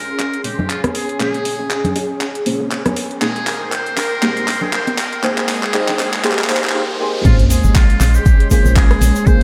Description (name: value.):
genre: deep house.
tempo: 119 BPM.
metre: 4/4.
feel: swing 57% on 16ths.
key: Bb dorian.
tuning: A4 = 440 Hz.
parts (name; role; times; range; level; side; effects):
trumpet with metal mute; melody; 0.0-9.4 s; F4 to C5; -27 LUFS; equal; vintage 12-bit sampler grit, low-pass filter.
soft string machine; sustained chords; 0.0-9.4 s; Ab3 to Eb6; -26 LUFS; equal; ensemble chorus, sidechain pumping.
deep mellow chord stab; stabs; 0.0-9.4 s; Ab3 to G5; -23 LUFS; equal; chorus, phaser, sidechain pumping, tape echo.
woody FM bass; bass; 0.0-9.4 s; Eb1 to Bb1; -18 LUFS; equal; tube saturation, sidechain pumping, high-pass filter.
riser and sub drop; sound effects; 1.5-9.3 s; none; -28 LUFS; equal; none.
deep house drum kit; drums; 0.2-9.4 s; crash cymbal, handclaps, hi-hat, rim click; -24 LUFS; equal; overdrive.
bongos and congas; percussion; 0.4-6.1 s; none; -26 LUFS; equal; sidechain pumping on perc.
tube shaker; percussion; 7.2-9.4 s; none; -31 LUFS; equal; none.
damped 70s drum kit; drums; 7.3-9.4 s; ride cymbal, snare drum; -41 LUFS; equal; none.
electronic kick drum; drums; 7.3-9.4 s; none; -14 LUFS; equal; overdrive.
room: moderate plate reverb, RT60 1.7 s, small room ambience.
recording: dreamy mix soaked in reverb, high-pass filter.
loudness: -16 LUFS.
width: mono.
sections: 0.0-7.3 A section; 7.3-9.4 B section.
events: build-up 0.0-7.3; drum fill 0.0-6.7; filter sweep on synth stab 0.0-7.3; break 6.7-7.3; drop 7.3-9.4; impact 7.3-9.3.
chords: 0.0 Bbm9; 3.0 Abmaj9; 5.2 Fm9; 7.3 Bbm9.